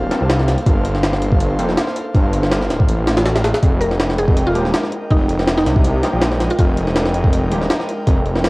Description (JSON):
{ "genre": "drum and bass, jungle", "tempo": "162 BPM", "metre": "4/4", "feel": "swing 53% on 16ths", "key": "unclear", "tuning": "A4 = 440 Hz", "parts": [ { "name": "mallet-like synth pluck", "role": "melody", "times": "0.0-0.3, 3.8-6.7 s", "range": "Eb4 to Bb4", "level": "-23 LUFS", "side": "equal", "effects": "chorus, cassette tape, dub echo" }, { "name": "airy breathy pad", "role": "sustained chords", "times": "0.0-8.5 s", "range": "Ab3 to G5", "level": "-26 LUFS", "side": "equal", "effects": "chorus, cassette tape" }, { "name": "orchestra-hit-like synth stab", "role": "stabs", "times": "0.0-8.5 s", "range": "F3 to A4", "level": "-28 LUFS", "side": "equal", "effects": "none" }, { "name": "detuned saw bass", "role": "bass", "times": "0.0-8.5 s", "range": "D1 to C2", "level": "-18 LUFS", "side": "equal", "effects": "tube saturation" }, { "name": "jungle sampler-style drum kit", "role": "drums", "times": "0.1-8.5 s", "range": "hi-hat, kick drum, snare drum", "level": "-17 LUFS", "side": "equal", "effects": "cassette tape" } ], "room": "light reverb, digital ambience", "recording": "home recording on cassette, vinyl crackle", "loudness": "-14 LUFS", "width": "side -23 dB against mid", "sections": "0.0-8.5 A section", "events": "none", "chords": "0.0 Gm11; 3.6 Fm11" }